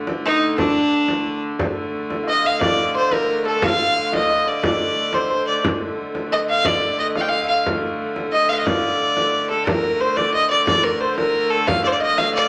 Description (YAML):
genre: medieval dance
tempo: 119 BPM (dotted quarters)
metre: 6/8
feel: straight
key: D phrygian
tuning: A4 = 439 Hz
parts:
  - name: rich hurdy-gurdy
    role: drone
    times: 0.0-12.5 s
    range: D3 to A3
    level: -29 LUFS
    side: equal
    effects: none
  - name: frame drum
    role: percussion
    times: 0.1-12.4 s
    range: none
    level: -27 LUFS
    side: equal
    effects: none
  - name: rich fiddle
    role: melody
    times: 0.2-12.5 s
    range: D4 to G5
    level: -21 LUFS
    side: equal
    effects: none
  - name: hammered dulcimer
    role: second line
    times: 2.2-12.5 s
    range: A4 to F5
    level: -28 LUFS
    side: equal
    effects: none
room: wet large studio reverb, RT60 0.9 s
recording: none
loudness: -20 LUFS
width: mono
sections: 0.0-1.6 A section; 1.6-9.7 A section; 9.7-12.5 B section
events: none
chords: none